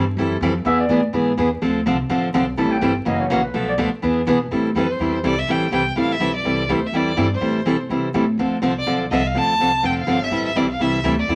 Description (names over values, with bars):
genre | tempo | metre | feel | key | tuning
acoustic string swing (jazz manouche) | 248 BPM | 4/4 | swing 55% on 8ths | A minor | A4 = 440 Hz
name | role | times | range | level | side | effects
picked acoustic archtop guitar | accompaniment | 0.0-11.3 s | B2 to A4 | -22 LUFS | equal | none
upright bass | bass | 0.0-11.3 s | F1 to C3 | -28 LUFS | equal | none
growling clarinet | second line | 0.7-3.8 s | B4 to A5 | -26 LUFS | equal | none
warm violin | melody | 4.8-11.3 s | B4 to A5 | -25 LUFS | equal | none
room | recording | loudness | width
moderate studio reverb, RT60 0.7 s | vinyl crackle | -20 LUFS | mono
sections
0.0-4.5 A section; 4.5-11.3 B section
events
clarinet solo 0.0-4.5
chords
0.0 Am7; 0.7 E7; 1.6 Dm7; 2.6 Am7; 3.1 F#7; 3.5 Bm7b5; 4.0 E7; 4.5 Am7; 8.4 Dm7; 10.3 Am7